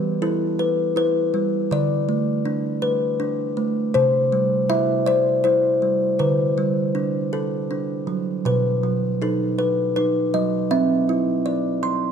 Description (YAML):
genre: children's music, lullaby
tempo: 53 BPM (dotted quarters)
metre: 6/8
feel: straight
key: unclear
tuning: A4 = 440 Hz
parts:
  - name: kalimba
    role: solo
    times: 0.0-12.1 s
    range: B2 to C6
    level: -19 LUFS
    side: equal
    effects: none
room: moderate scoring stage reverb, RT60 1.5 s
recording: dark, warm production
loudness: -19 LUFS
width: side -7 dB against mid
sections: 0.0-12.1 A section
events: none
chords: 0.0 Em; 1.7 Bm7/D; 3.9 C; 6.2 G/D; 7.3 D; 8.5 B; 10.7 Cadd9